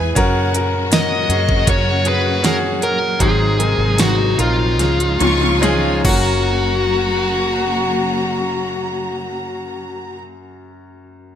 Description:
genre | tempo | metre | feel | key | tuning
pop ballad | 70-80 BPM | 4/4 | straight | F# major | A4 = 441 Hz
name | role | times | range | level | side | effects
bright studio violin section | second line | 0.0-10.2 s | F#5 to C#6 | -26 LUFS | right 2 dB | none
clear grand piano | accompaniment | 0.0-11.4 s | F#2 to B4 | -22 LUFS | equal | none
rich studio string section | sustained chords | 0.0-10.2 s | A#2 to G#4 | -24 LUFS | left 3 dB | none
vintage muted fingered electric bass | bass | 0.0-10.2 s | F#1 to F#2 | -21 LUFS | right 1 dB | none
pop drum kit | drums | 0.2-6.2 s | crash cymbal, hi-hat, kick drum, snare drum, toms | -19 LUFS | equal | gated reverb
dark smooth lead guitar | melody | 0.9-10.2 s | E#4 to D#5 | -20 LUFS | left 2 dB | overdrive
room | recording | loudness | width
light reverb | bright 1980s-style digital production | -14 LUFS | side -9 dB against mid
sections
0.0-6.5 A section; 6.5-9.8 B section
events
slowing down 0.2-6.5; drum fill 4.8-6.5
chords
0.2 F#; 3.2 G#7; 4.8 C#add9; 6.0 F#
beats
| 0.17 0.92 1.68 2.44 | 3.21 3.99 4.79 5.62 | 6.47 7.31 8.15 8.99

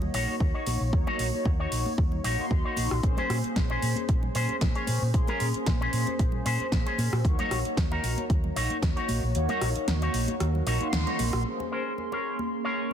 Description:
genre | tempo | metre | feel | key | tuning
nu-disco, nu disco | 114 BPM | 4/4 | swing 54% on 16ths | Bb minor | A4 = 439 Hz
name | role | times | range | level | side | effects
mellow synth brass | accompaniment | 0.0-12.9 s | Bb3 to C6 | -32 LUFS | equal | chorus, sidechain pumping, ping-pong delay
hollow-body short-scale fingered electric bass | bass | 0.0-11.4 s | Bb1 to Bb2 | -29 LUFS | equal | none
congas | percussion | 0.0-12.9 s | none | -39 LUFS | equal | none
electric guitar with an envelope filter | riff | 0.1-12.9 s | Db4 to Db5 | -32 LUFS | left 2 dB | analog chorus, low-pass filter, ping-pong delay
pop drum kit | drums | 0.1-12.9 s | cabasa, hi-hat, rim click, snare drum | -34 LUFS | right 1 dB | overdrive, low-pass filter on hats, low-pass filter on snare, low-pass filter on perc, low-pass filter on room
electronic kick drum | drums | 0.4-8.9 s | none | -26 LUFS | equal | overdrive
room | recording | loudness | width
light reverb | dense, heavily limited modern master | -25 LUFS | side -9 dB against mid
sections
0.0-11.5 A section; 11.5-12.9 B section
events
kick drops out 9.4-11.5; band accent 10.9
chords
0.0 Ebm7; 3.0 Bbm9; 7.2 Ebm7; 11.5 Bbm9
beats
0.40 | 0.93 1.46 1.98 2.51 | 3.04 3.56 4.09 4.62 | 5.14 5.67 6.19 6.72 | 7.25 7.77 8.30 8.82 | 9.35 9.88 10.40 10.93 | 11.46 11.98 12.51

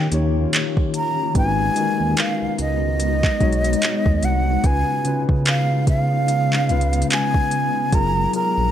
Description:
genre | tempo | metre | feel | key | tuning
contemporary R&B | 73 BPM | 4/4 | swing 58% on 16ths | G# dorian | A4 = 439 Hz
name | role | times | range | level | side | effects
breathy hollow jazz flute | melody | 0.0-8.7 s | D#5 to A#5 | -23 LUFS | equal | none
mellow tine electric piano | accompaniment | 0.0-8.7 s | C#3 to C#5 | -25 LUFS | left 4 dB | medium stereo tremolo
granular cloud pad | sustained chords | 0.0-8.7 s | C#3 to A#5 | -27 LUFS | equal | built-in reverb, sidechain pumping
smooth synth bass | bass | 0.0-8.7 s | F#1 to C#3 | -21 LUFS | right 1 dB | none
smooth R&B drum kit | drums | 0.1-8.6 s | handclaps, hi-hat, kick drum | -21 LUFS | right 1 dB | overdrive, vintage 12-bit sampler grit
room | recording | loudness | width
light reverb | none | -17 LUFS | side -10 dB against mid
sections
0.0-8.7 A section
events
none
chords
0.0 D#7; 1.4 G#m7; 4.6 C#7; 7.9 F#maj9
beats
0.53 | 1.35 2.17 2.99 3.82 | 4.64 5.46 6.28 7.10 | 7.92

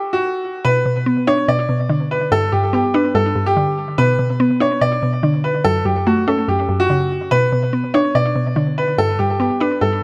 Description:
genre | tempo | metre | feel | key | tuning
hip hop | 144 BPM | 4/4 | half-time | B minor | A4 = 443 Hz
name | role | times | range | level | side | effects
bright upright piano | melody | 0.0-10.0 s | F#4 to D5 | -21 LUFS | equal | tape echo
mallet-like synth pluck | accompaniment | 0.6-10.0 s | F#2 to D4 | -20 LUFS | equal | chorus, tape echo
room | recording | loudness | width
light reverb | echo-heavy mix | -17 LUFS | mono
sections
0.6-10.0 A section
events
none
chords
0.0 N.C.; 0.6 Bm; 2.3 G; 4.0 Bm; 5.6 F#m; 7.3 Bm; 9.0 G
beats
0.23 | 0.65 1.06 1.48 1.90 | 2.31 2.73 3.15 3.56 | 3.98 4.40 4.82 5.23 | 5.65 6.07 6.48 6.90 | 7.32 7.73 8.15 8.56 | 8.98 9.40 9.81

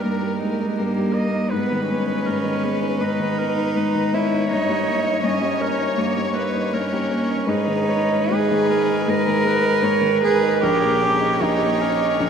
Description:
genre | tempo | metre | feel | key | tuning
classical, slow romantic movement for piano quartet | 79 BPM | 4/4 | uneven beats, rubato | G# minor | A4 = 440 Hz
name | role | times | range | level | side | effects
warm violin | melody | 0.0-12.3 s | A#4 to C#5 | -27 LUFS | left 4 dB | none
clear cello | second line | 0.0-12.3 s | G3 to A#4 | -21 LUFS | right 3 dB | none
warm baby grand piano | accompaniment | 0.0-12.3 s | A#1 to D#4 | -22 LUFS | left 1 dB | none
warm viola | accompaniment | 0.0-12.3 s | D#4 to D#5 | -28 LUFS | right 1 dB | none
room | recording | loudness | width
wet huge ambient reverb, RT60 7.2 s | in a vast, echoing space | -18 LUFS | side -7 dB against mid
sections
0.0-12.3 A section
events
none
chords
0.0 D#/G; 1.5 G#m; 4.5 D#7/G; 7.5 G#m; 10.6 D#7/A#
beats
0.02 0.77 | 1.51 2.26 3.01 3.77 | 4.51 5.25 5.99 6.74 | 7.49 8.32 9.09 9.84 | 10.64 11.42 12.20

